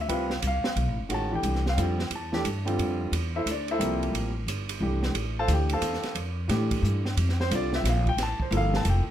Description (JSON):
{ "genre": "modal jazz", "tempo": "178 BPM", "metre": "3/4", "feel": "swing 64% on 8ths", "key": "A phrygian", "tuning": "A4 = 440 Hz", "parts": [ { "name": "warm grand piano", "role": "accompaniment", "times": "0.0-9.0 s", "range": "D3 to A5", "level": "-29 LUFS", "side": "equal", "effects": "none" }, { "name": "upright bass", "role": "bass", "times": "0.0-9.1 s", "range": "F1 to A2", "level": "-27 LUFS", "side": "equal", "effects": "none" }, { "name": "open jazz drum kit", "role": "drums", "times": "0.1-8.9 s", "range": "hi-hat, kick drum, ride cymbal, snare drum", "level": "-33 LUFS", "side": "right 3 dB", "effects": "none" } ], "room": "light reverb", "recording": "none", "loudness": "-24 LUFS", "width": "side -11 dB against mid", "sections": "0.0-1.1 A section; 1.1-9.1 A section", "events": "none", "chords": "0.0 F5; 1.1 Am7; 5.1 F/A", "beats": "| 0.09 0.43 0.76 | 1.10 1.44 1.78 | 2.11 2.45 2.79 | 3.12 3.46 3.80 | 4.14 4.47 4.81 | 5.15 5.49 5.82 | 6.16 6.50 6.83 | 7.17 7.51 7.84 | 8.18 8.52 8.85" }